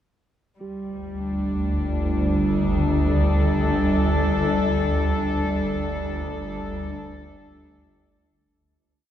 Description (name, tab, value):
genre	dark ambient drone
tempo	free time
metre	none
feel	none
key	unclear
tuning	A4 = 438 Hz
part	warm studio cello section	sustained chords	0.6-8.5 s	G3 to A4	-24 LUFS	left 1 dB	none
part	swarming drone	drone	1.2-8.6 s	G1 to D2	-23 LUFS	equal	built-in reverb
part	bronze singing bowl	texture	0.6-8.5 s	G3 to G4	-39 LUFS	right 4 dB	none
room	wet huge ambient reverb, RT60 8.5 s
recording	dark, warm production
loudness	-20 LUFS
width	side -10 dB against mid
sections	0.6-8.5 A section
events	fade-out 4.5-8.5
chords	0.6 G5